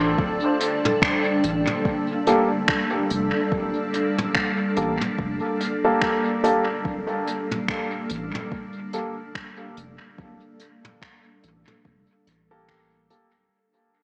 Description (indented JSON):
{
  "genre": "ambient dub",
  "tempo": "72 BPM",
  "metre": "4/4",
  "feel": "swing 58% on 16ths",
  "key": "unclear",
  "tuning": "A4 = 440 Hz",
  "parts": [
    { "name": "granular cloud pad", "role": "sustained chords", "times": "0.0-13.5 s", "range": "G3 to G5", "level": "-28 LUFS", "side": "equal", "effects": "built-in reverb" },
    { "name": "soft dub sub bass", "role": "bass", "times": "0.0-13.5 s", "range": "D1 to A1", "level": "-33 LUFS", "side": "equal", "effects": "none" },
    { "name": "electronic kick drum", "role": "drums", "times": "0.2-12.9 s", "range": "none", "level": "-29 LUFS", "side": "equal", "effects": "none" },
    { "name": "jazz brush drum kit", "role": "drums", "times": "0.6-13.3 s", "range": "finger snaps, hi-hat, toms", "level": "-30 LUFS", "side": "equal", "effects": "dub echo" },
    { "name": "dark upright piano", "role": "stabs", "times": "2.3-13.3 s", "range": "Bb3 to A4", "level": "-28 LUFS", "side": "equal", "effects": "dub echo" }
  ],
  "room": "moderate spring reverb, RT60 2.6 s",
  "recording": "echo-heavy mix, small speaker sound",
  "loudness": "-24 LUFS",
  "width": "mono",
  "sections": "0.0-13.5 A section",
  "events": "fade-out 0.2-13.5",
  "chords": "0.2 Gmadd9/D"
}